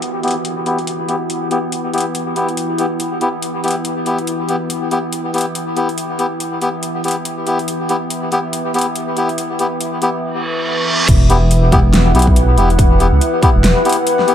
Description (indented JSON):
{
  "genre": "deep dubstep",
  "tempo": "141 BPM",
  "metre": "4/4",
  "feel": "swing 59% on 16ths, half-time",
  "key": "E minor",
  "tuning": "A4 = 440 Hz",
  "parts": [
    { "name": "deep dark ambient pad", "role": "sustained chords", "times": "0.0-14.3 s", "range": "E4 to F#5", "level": "-20 LUFS", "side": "left 1 dB", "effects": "chorus, built-in reverb" },
    { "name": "dubstep drum kit", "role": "drums", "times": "0.0-14.3 s", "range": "crash cymbal, hi-hat, snare drum", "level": "-22 LUFS", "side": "equal", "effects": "low-pass filter on hats, low-pass filter on snare, low-pass filter on cymbals" },
    { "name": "downlifter and reverse cymbal", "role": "sound effects", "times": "0.0-0.9, 10.4-11.1 s", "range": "none", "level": "-21 LUFS", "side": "right 3 dB", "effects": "none" },
    { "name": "melodica", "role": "stabs", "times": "0.2-14.3 s", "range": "B3 to G4", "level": "-18 LUFS", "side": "left 2 dB", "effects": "low-pass filter, dub echo" },
    { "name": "dark detuned saw bass", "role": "bass", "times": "11.1-13.7 s", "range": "E1 to C#2", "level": "-12 LUFS", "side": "equal", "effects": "none" },
    { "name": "electronic kick drum", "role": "drums", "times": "11.1-13.5 s", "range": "none", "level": "-13 LUFS", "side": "equal", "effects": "none" }
  ],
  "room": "moderate spring reverb, RT60 2.0 s, digital ambience",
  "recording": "none",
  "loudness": "-14 LUFS",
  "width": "side -10 dB against mid",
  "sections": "0.0-11.1 A section; 11.1-14.3 B section",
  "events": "filter sweep on melodica 0.0-11.1; filter sweep on ambient pad 0.0-11.1; reverse cymbal 10.4-11.1; drop 11.1-14.3",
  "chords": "0.0 Em",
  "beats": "0.02 0.45 | 0.87 1.30 1.72 2.15 | 2.57 3.00 3.42 3.85 | 4.28 4.70 5.13 5.55 | 5.98 6.40 6.83 7.25 | 7.68 8.11 8.53 8.96 | 9.38 9.81 10.23 10.66 | 11.09 11.51 11.94 12.36 | 12.79 13.21 13.64 14.06"
}